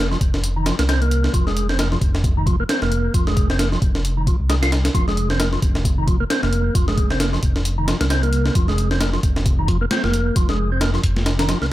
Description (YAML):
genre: breakbeat, breaks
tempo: 133 BPM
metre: 4/4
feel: swing 57% on 16ths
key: unclear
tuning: A4 = 443 Hz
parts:
  - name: percussive tonewheel organ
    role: riff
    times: 0.0-11.7 s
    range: Eb3 to F4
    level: -24 LUFS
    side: equal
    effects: chorus vibrato, fast rotary speaker, tube saturation, vintage 12-bit sampler grit, digital delay
  - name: dark detuned saw bass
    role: bass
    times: 0.0-11.7 s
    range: F1 to C2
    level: -21 LUFS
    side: equal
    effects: none
  - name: breakbeat sampler-style drum kit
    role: drums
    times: 0.1-11.7 s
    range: hi-hat, kick drum, snare drum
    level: -20 LUFS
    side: equal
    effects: small room ambience
room: digital ambience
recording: none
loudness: -17 LUFS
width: side -15 dB against mid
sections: 0.0-11.7 A section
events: none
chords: 0.0 Fm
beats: 0.44 0.89 | 1.34 1.79 2.24 2.69 | 3.14 3.59 4.04 4.50 | 4.95 5.40 5.85 6.30 | 6.75 7.20 7.65 8.11 | 8.56 9.01 9.46 9.91 | 10.36 10.81 11.26 11.71